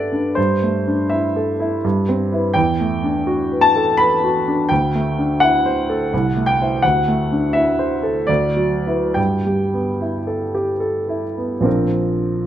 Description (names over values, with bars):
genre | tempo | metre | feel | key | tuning
classical, impressionist solo piano | 65-86 BPM | 3/4 | rubato | G major | A4 = 440 Hz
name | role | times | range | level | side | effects
warm grand piano | solo | 0.0-12.5 s | Bb1 to B5 | -16 LUFS | equal | none
room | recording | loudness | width
moderate recital hall reverb, RT60 1.6 s | close, detailed microphones | -16 LUFS | side -11 dB against mid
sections
0.0-11.7 A section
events
none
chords
0.4 D9sus4/G; 1.8 Cmaj7/G; 2.6 Em11; 4.7 D11; 6.1 C6; 6.8 D9; 8.3 D69; 9.2 G69; 11.7 Bbadd9